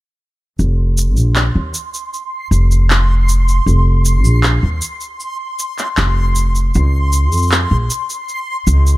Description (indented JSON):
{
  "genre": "folktronica",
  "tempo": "78 BPM",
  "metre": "4/4",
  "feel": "straight",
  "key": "unclear",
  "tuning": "A4 = 441 Hz",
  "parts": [
    { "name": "upright bass", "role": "bass", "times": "0.6-9.0 s", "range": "F1 to F2", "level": "-12 LUFS", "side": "equal", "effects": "none" },
    { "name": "electronic cabasa and handclaps", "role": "drums", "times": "0.6-9.0 s", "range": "none", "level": "-19 LUFS", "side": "equal", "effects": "none" },
    { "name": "backwards swelling texture", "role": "texture", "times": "1.5-9.0 s", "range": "C6", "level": "-23 LUFS", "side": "equal", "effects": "built-in reverb" }
  ],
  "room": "little or no reverb",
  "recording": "none",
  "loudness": "-13 LUFS",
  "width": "side -18 dB against mid",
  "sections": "0.6-9.0 A section",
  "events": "none",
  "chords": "0.6 F5; 6.7 Db",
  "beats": "| 0.59 1.36 2.13 2.90 | 3.67 4.44 5.21 5.98 | 6.75 7.52 8.29"
}